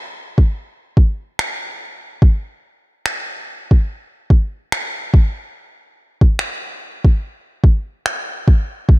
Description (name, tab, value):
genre	R&B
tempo	72 BPM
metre	4/4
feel	swing 58% on 16ths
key	none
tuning	none
part	smooth R&B drum kit	drums	0.4-9.0 s	finger snaps, kick drum	-14 LUFS	equal	none
room	little or no reverb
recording	dark, warm production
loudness	-15 LUFS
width	side -19 dB against mid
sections	0.0-9.0 A section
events	break 0.0-8.9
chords	none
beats	0.55 1.39 | 2.22 3.05 3.89 4.72 | 5.55 6.39 7.22 8.05 | 8.89